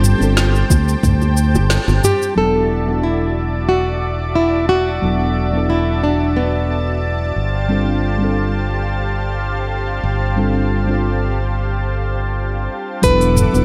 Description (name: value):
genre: sunset chillout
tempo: 90 BPM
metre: 4/4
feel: swing 54% on 16ths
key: E phrygian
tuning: A4 = 443 Hz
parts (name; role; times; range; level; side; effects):
- mellow FM electric piano; accompaniment; 0.0-13.6 s; F#3 to A4; -25 LUFS; equal; chorus, phaser, tape echo
- lush unison pad; sustained chords; 0.0-13.6 s; F#4 to D6; -27 LUFS; equal; chorus
- modern bright fingered electric bass; bass; 0.0-13.6 s; E1 to D2; -21 LUFS; equal; none
- smooth R&B drum kit; drums; 0.0-2.3, 13.0-13.6 s; hi-hat, shaker, snare drum, toms; -22 LUFS; equal; none
- electronic kick drum; drums; 0.7-1.2, 13.0-13.2 s; none; -18 LUFS; equal; none
- bongos; percussion; 0.7-2.0 s; none; -27 LUFS; equal; none
- flamenco guitar; melody; 2.0-7.3, 13.0-13.6 s; B3 to B4; -20 LUFS; equal; tape echo
- drifting glass-harmonics texture; texture; 3.2-13.0 s; D5 to D6; -33 LUFS; equal; chorus, built-in reverb
room: light reverb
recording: none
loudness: -17 LUFS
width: mono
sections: 0.0-2.4 A section; 2.4-13.0 B section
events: band accent 1.7-2.0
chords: 0.0 G9sus4; 2.4 E9sus4; 7.4 G9sus4; 13.0 E9sus4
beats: 0.37 1.03 1.70 | 2.37 3.03 3.70 4.37 | 5.03 5.70 6.37 7.03 | 7.70 8.37 9.03 9.70 | 10.37 11.03 11.70 12.37 | 13.03